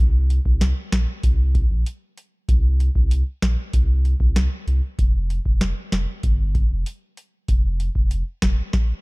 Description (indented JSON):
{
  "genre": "dancehall",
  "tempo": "96 BPM",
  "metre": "4/4",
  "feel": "straight",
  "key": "unclear",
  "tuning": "A4 = 439 Hz",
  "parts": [
    { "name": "saturated sub bass", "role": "bass", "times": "0.0-8.6 s", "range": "F1 to C2", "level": "-20 LUFS", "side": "equal", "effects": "none" },
    { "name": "booming analog drum machine", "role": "drums", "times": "0.3-8.9 s", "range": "hi-hat, kick drum, snare drum", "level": "-20 LUFS", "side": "equal", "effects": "none" }
  ],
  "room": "little or no reverb",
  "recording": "dark, warm production",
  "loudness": "-18 LUFS",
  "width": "side -27 dB against mid",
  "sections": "0.0-9.0 A section",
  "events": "none",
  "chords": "none"
}